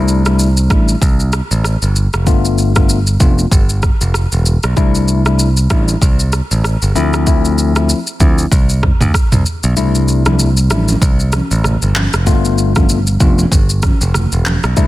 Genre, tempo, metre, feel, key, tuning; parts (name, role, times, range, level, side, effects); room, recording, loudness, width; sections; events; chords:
afrobeats; 96 BPM; 4/4; swing 58% on 16ths; C major; A4 = 440 Hz
tine electric piano; accompaniment; 0.0-14.9 s; F3 to F4; -18 LUFS; moving between left 10 dB and equal; auto-pan
modern bright picked electric bass; bass; 0.0-14.9 s; E1 to D2; -14 LUFS; equal
deep house drum kit; drums; 0.1-14.9 s; handclaps, kick drum, rim click, shaker, toms; -15 LUFS; equal; soft clipping on snare
congas; percussion; 9.8-14.9 s; -22 LUFS; right 2 dB
little or no reverb; dense, heavily limited modern master; -11 LUFS; side -16 dB against mid
0.0-14.9 A section
kick muted 9.8-11.0
0.0 C69; 2.3 G7; 4.8 C69; 7.0 Dm9; 9.8 C69; 12.3 G7